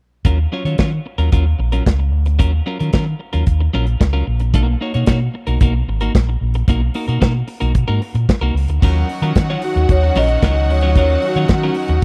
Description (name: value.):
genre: disco.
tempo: 112 BPM.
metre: 4/4.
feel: straight.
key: Eb minor.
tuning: A4 = 440 Hz.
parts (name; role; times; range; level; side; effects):
clean electric guitar; accompaniment; 0.2-11.9 s; Gb3 to Db5; -26 LUFS; equal; spring reverb.
fingered electric bass; bass; 0.2-12.0 s; Ab1 to Eb3; -19 LUFS; equal; none.
modern studio drum kit; drums; 0.2-12.0 s; crash cymbal, hi-hat, kick drum, snare drum; -17 LUFS; equal; none.
bright studio violin section; second line; 8.8-12.0 s; Gb4 to Gb5; -28 LUFS; equal; none.
rich studio string section; sustained chords; 8.8-12.0 s; Eb3 to Eb4; -28 LUFS; equal; none.
vibraphone with soft mallets; melody; 9.6-12.0 s; Gb4 to Eb5; -22 LUFS; equal; none.
room: small room ambience.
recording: dry, close 1970s-style studio recording.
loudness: -17 LUFS.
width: mono.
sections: 0.2-8.8 A section; 8.8-12.0 B section.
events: none.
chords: 0.2 Ebm9; 4.5 Bmaj7; 8.8 Ebm9.